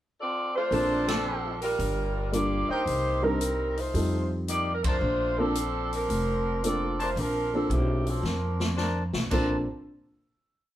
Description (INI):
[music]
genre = jazz, big band swing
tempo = 112 BPM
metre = 4/4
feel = swing 68% on 8ths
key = Bb major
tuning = A4 = 440 Hz
[part]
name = dark saxophone section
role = melody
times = 0.2-8.8 s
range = Eb3 to D5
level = -29 LUFS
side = equal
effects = none
[part]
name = dark grand piano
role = accompaniment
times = 0.7-9.7 s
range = G3 to Bb4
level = -29 LUFS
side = equal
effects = none
[part]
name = warm trumpet section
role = stabs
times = 0.7-9.6 s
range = D4 to A5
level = -32 LUFS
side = left 1 dB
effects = none
[part]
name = upright bass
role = bass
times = 0.7-9.7 s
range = F1 to F2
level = -30 LUFS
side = equal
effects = none
[part]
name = swinging big-band drum kit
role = drums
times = 0.7-9.5 s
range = crash cymbal, hi-hat, kick drum, ride cymbal, snare drum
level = -33 LUFS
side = equal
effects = none
[sound]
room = moderate studio reverb, RT60 0.8 s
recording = band playing live in one room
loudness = -25 LUFS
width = side -13 dB against mid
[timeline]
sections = 0.0-0.7 pickup bar; 0.7-9.3 A section; 9.3-10.8 final chord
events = band accent 1.0, 4.7; drum fill 8.2-9.3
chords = 0.0 Amadd11; 0.7 Bbmaj9; 1.8 Gm7; 2.9 Cm7; 3.9 F7; 5.0 Bbmaj9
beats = 0.18 | 0.72 1.26 1.79 2.33 | 2.87 3.40 3.94 4.48 | 5.02 5.55 6.09 6.63 | 7.17 7.71 8.24 8.78 | 9.32